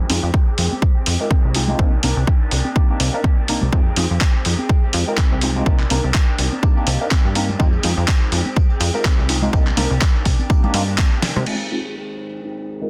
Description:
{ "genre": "filtered disco house", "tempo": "124 BPM", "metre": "4/4", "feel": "swing 56% on 16ths", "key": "F dorian", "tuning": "A4 = 440 Hz", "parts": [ { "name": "electric guitar through a small old amp", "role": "riff", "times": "0.0-12.9 s", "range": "Eb3 to G4", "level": "-31 LUFS", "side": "equal", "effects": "analog chorus, sidechain pumping, low-pass filter" }, { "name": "plucky analog bass", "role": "bass", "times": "0.0-11.4 s", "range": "C2 to C3", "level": "-23 LUFS", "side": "equal", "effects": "sidechain pumping, low-pass filter" }, { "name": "tine electric piano", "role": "accompaniment", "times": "0.1-12.9 s", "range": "Ab3 to Bb4", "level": "-27 LUFS", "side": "equal", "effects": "overdrive, phaser, vintage 12-bit sampler grit, sidechain pumping, low-pass filter" }, { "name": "dusty soul sampler-style drum kit", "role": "drums", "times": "0.1-11.6 s", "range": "crash cymbal, handclaps, hi-hat, snare drum", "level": "-26 LUFS", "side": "equal", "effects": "sidechain pumping on hats, sidechain pumping on cymbals" }, { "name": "tambourine and congas", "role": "percussion", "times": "0.1-11.4 s", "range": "none", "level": "-31 LUFS", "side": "equal", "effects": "none" }, { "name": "electronic kick drum", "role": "drums", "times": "0.3-11.1 s", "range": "none", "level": "-18 LUFS", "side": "equal", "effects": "overdrive" } ], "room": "digital ambience", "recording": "dense, heavily limited modern master", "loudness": "-18 LUFS", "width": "mono", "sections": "0.0-11.5 A section; 11.5-12.9 B section", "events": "filter sweep 0.0-11.5, 11.5-12.9; drum fill 11.2", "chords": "0.0 Fm9; 1.8 Cm9; 3.7 Fm9; 5.7 Cm9; 7.6 Fm9; 9.5 Cm9; 11.5 Fm9 (rootless)", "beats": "0.34 0.82 1.31 | 1.79 2.27 2.76 3.24 | 3.73 4.21 4.69 5.18 | 5.66 6.14 6.63 7.11 | 7.60 8.08 8.56 9.05 | 9.53 10.02 10.50 10.98 | 11.47 11.95 12.44" }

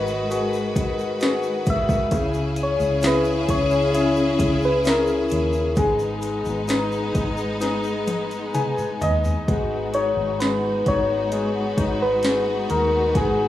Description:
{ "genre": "pop ballad", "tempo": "66 BPM", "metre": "4/4", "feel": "straight", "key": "G# minor", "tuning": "A4 = 444 Hz", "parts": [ { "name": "soft struck synth lead", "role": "melody", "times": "0.0-13.5 s", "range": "G#4 to E5", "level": "-24 LUFS", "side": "left 1 dB", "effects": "chorus" }, { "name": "clear concert grand piano", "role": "accompaniment", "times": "0.0-13.5 s", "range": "C#3 to G#5", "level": "-26 LUFS", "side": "left 3 dB", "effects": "none" }, { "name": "clear studio string section", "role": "sustained chords", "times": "0.0-13.5 s", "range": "C#3 to B4", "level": "-25 LUFS", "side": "left 1 dB", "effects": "none" }, { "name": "vintage muted fingered electric bass", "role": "bass", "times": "0.0-13.5 s", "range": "G#1 to D#2", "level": "-28 LUFS", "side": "equal", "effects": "none" }, { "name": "egg shaker", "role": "percussion", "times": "0.1-9.5 s", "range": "none", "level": "-47 LUFS", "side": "left 4 dB", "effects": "none" }, { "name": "smooth R&B drum kit", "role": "drums", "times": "0.3-13.4 s", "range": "hi-hat, kick drum, snare drum, toms", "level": "-24 LUFS", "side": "equal", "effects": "overdrive" } ], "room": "little or no reverb", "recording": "rough home demo mix, studio reverb", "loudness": "-19 LUFS", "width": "side -13 dB against mid", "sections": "0.0-9.5 A section; 9.5-13.5 A section", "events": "drum fill 7.6-9.5; grand piano fill 8.1-9.5", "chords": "0.0 G#m7; 2.1 C#m; 5.8 G#m; 9.5 G#m7", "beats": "0.30 1.21 | 2.12 3.03 3.94 4.85 | 5.77 6.69 7.61 8.55 | 9.48 10.40 11.32 12.24 | 13.15" }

